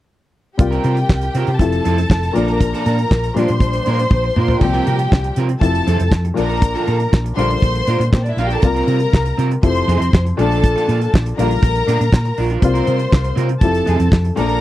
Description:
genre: disco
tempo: 120 BPM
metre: 4/4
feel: straight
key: unclear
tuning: A4 = 439 Hz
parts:
  - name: warm symphonic violin section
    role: second line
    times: 0.6-14.6 s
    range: C4 to C6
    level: -21 LUFS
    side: left 1 dB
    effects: none
  - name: dark baby grand piano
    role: accompaniment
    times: 0.6-14.6 s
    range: Bb2 to F4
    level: -22 LUFS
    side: left 5 dB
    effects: none
  - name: electric guitar at the edge of break-up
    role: accompaniment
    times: 0.6-14.6 s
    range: Bb3 to Bb4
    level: -24 LUFS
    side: right 7 dB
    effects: wide subtle chorus
  - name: hollow-body short-scale fingered electric bass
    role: bass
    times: 0.6-14.6 s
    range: F1 to C3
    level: -18 LUFS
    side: equal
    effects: none
  - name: damped 70s drum kit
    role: drums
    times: 0.6-14.6 s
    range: crash cymbal, handclaps, hi-hat, kick drum, snare drum, toms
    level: -13 LUFS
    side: equal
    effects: none
room: little or no reverb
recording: dry, close 1970s-style studio recording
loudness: -14 LUFS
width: side -14 dB against mid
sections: 0.6-4.6 A section; 4.6-14.6 B section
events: drum fill 4.1-4.6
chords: 0.6 C7sus4; 1.6 Fmaj7; 2.4 Bbmaj7; 3.4 Gm7/Bb; 4.6 C7sus4; 5.6 Fmaj7; 6.4 Bbmaj7; 7.4 Gm7/Bb; 8.6 C7sus4; 9.6 Fmaj7; 10.4 Bbmaj7; 11.4 Gm7/Bb; 12.6 C7sus4; 13.6 Fmaj7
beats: | 0.60 1.10 1.60 2.10 | 2.61 3.11 3.61 4.11 | 4.61 5.12 5.62 6.12 | 6.62 7.12 7.62 8.12 | 8.62 9.13 9.63 10.13 | 10.63 11.13 11.63 12.13 | 12.63 13.12 13.62 14.12

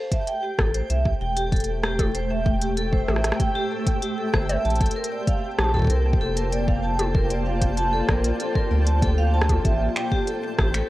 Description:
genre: IDM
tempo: 96 BPM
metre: 4/4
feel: straight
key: A phrygian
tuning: A4 = 440 Hz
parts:
  - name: granular cloud pad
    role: sustained chords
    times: 0.4-10.9 s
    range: A3 to E6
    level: -30 LUFS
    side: left 1 dB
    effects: built-in reverb
  - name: vibraphone with hard mallets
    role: arpeggios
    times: 0.0-10.8 s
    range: G4 to A5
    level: -27 LUFS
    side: right 1 dB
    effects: tape echo
  - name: twinkling granular texture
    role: texture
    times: 0.2-10.9 s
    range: G4 to G5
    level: -35 LUFS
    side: right 2 dB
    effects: built-in reverb
  - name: electronic kick drum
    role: drums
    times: 0.1-10.7 s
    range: none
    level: -23 LUFS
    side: equal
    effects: none
  - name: organic electronic drum kit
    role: drums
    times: 0.1-10.9 s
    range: finger snaps, hi-hat, rim click, toms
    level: -28 LUFS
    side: equal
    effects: none
  - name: round analog bass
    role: bass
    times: 0.6-10.8 s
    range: E1 to D2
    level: -24 LUFS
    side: equal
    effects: none
room: light reverb, digital ambience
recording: worn, warbling old tape, cassette tape, warbly pitch drift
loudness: -20 LUFS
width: side -16 dB against mid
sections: 0.0-10.9 A section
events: none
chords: 0.0 Am7; 4.6 Bbmaj7; 9.6 Am7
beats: 0.27 0.90 1.52 | 2.15 2.77 3.40 4.02 | 4.65 5.27 5.90 6.52 | 7.15 7.77 8.40 9.02 | 9.65 10.27

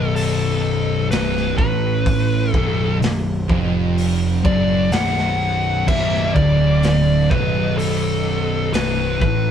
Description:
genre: stoner and doom metal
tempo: 63 BPM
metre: 4/4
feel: straight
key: B minor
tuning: A4 = 440 Hz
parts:
  - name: fuzz lead guitar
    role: melody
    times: 0.0-9.5 s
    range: A4 to F#5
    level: -22 LUFS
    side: left 2 dB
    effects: distortion
  - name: thick fuzz guitar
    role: riff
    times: 0.0-9.5 s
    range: B1 to A2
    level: -23 LUFS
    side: left 4 dB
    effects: distortion
  - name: thick fuzz guitar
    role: riff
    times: 0.0-9.5 s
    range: B1 to A2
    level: -24 LUFS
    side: right 5 dB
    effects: distortion
  - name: thick fuzz guitar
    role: riff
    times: 0.0-9.5 s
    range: B1 to A2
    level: -26 LUFS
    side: equal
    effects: distortion
  - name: fuzz picked electric bass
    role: bass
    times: 0.0-9.5 s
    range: B0 to A1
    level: -22 LUFS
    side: right 1 dB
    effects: overdrive, tube saturation
  - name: raw garage drum kit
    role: drums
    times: 0.2-9.4 s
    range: crash cymbal, hi-hat, kick drum, snare drum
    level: -24 LUFS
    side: equal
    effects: none
room: light reverb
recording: band playing live in one room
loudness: -16 LUFS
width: side -8 dB against mid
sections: 0.0-9.5 A section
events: none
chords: 0.0 Bm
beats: 0.16 1.11 | 2.07 3.02 3.97 4.93 | 5.88 6.83 7.79 8.74

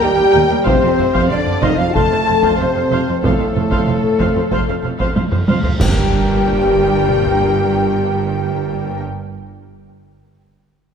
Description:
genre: cinematic, epic orchestral film score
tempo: 93 BPM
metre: 4/4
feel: straight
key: G minor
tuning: A4 = 440 Hz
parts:
  - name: warm symphonic violin section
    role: melody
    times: 0.0-9.0 s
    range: A4 to A5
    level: -26 LUFS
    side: left 5 dB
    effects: none
  - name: hollow concert flute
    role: second line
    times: 0.0-9.0 s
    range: A4 to A5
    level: -24 LUFS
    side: left 2 dB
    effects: none
  - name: warm studio violin section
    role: second line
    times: 0.0-9.0 s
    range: A4 to A5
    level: -26 LUFS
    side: left 4 dB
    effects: none
  - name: warm symphonic viola section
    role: accompaniment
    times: 0.0-9.0 s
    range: Bb3 to G5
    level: -25 LUFS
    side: right 1 dB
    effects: none
  - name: dark trombone section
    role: sustained chords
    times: 0.0-9.0 s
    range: A2 to A3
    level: -23 LUFS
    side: right 4 dB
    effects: none
  - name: mellow French horn section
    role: sustained chords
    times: 0.0-9.0 s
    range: A3 to A4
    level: -18 LUFS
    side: left 4 dB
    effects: none
  - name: rich symphonic cello section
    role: bass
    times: 0.0-9.0 s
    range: Eb2 to G2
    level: -23 LUFS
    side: right 4 dB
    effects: none
  - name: warm symphonic double bass section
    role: bass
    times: 0.0-9.0 s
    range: F1 to Eb2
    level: -23 LUFS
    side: right 5 dB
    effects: none
  - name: taiko ensemble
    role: drums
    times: 0.7-7.4 s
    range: none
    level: -20 LUFS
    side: right 1 dB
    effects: none
  - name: cymbal swell, clash cymbals and concert bass drum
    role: percussion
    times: 3.2-7.1 s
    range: none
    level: -24 LUFS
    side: right 1 dB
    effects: none
  - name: sub drop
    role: sound effects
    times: 6.1-9.0 s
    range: none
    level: barely audible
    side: none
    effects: none
room: moderate concert hall reverb, RT60 2.3 s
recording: none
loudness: -13 LUFS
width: side -7 dB against mid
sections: 0.0-5.8 A section; 5.8-8.4 B section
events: drum fill 5.2-5.8; band accent 5.8-6.4; impact 5.8-8.4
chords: 0.0 Eb; 0.7 F; 5.8 Gm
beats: 0.02 | 0.66 1.31 1.95 2.59 | 3.23 3.88 4.52 5.16 | 5.80 6.45 7.09 7.73

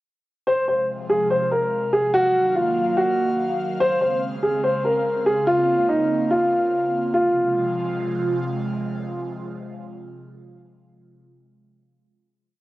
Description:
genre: hip hop, drill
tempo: 144 BPM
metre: 4/4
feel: half-time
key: F phrygian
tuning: A4 = 440 Hz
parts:
  - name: dark baby grand piano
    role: melody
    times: 0.5-8.3 s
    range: Eb4 to C5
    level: -19 LUFS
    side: equal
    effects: low-pass filter
  - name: airy breathy pad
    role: sustained chords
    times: 0.5-11.2 s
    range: C3 to F5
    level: -27 LUFS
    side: right 1 dB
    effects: chorus, phaser
room: moderate studio reverb, RT60 0.5 s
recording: home recording on cassette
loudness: -19 LUFS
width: side -17 dB against mid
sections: 0.5-7.1 breakdown; 7.1-10.5 final chord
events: none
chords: 0.5 Fm; 2.1 Ebmadd9; 3.8 Dbmaj7; 5.5 Bbmadd9; 7.1 Fm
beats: | 0.47 0.89 1.30 1.72 | 2.14 2.55 2.97 3.39 | 3.80 4.22 4.64 5.05 | 5.47 5.89 6.30 6.72 | 7.14 7.55 7.97 8.39 | 8.80 9.22 9.64 10.05

